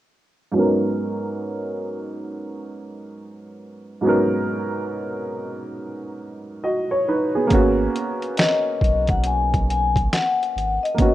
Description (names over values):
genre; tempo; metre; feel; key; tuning
lo-fi hip hop; 69 BPM; 4/4; swing 63% on 16ths; G# minor; A4 = 440 Hz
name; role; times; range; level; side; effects
warm upright piano; accompaniment; 0.5-11.1 s; G#2 to D#5; -22 LUFS; right 1 dB; low-pass filter
saturated sub bass; bass; 7.5-11.1 s; G#1 to B1; -24 LUFS; equal; none
boom bap sampler-style drum kit; drums; 7.5-11.1 s; hi-hat, kick drum, snare drum; -21 LUFS; equal; none
vibraphone with soft mallets; melody; 8.4-11.1 s; D#5 to G#5; -21 LUFS; left 4 dB; low-pass filter
room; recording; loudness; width
light reverb, studio ambience; rough home demo mix, cassette tape; -19 LUFS; side -14 dB against mid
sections
0.6-7.5 A section; 7.5-11.1 B section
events
filter sweep on upright piano 0.6-7.5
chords
0.6 G#m11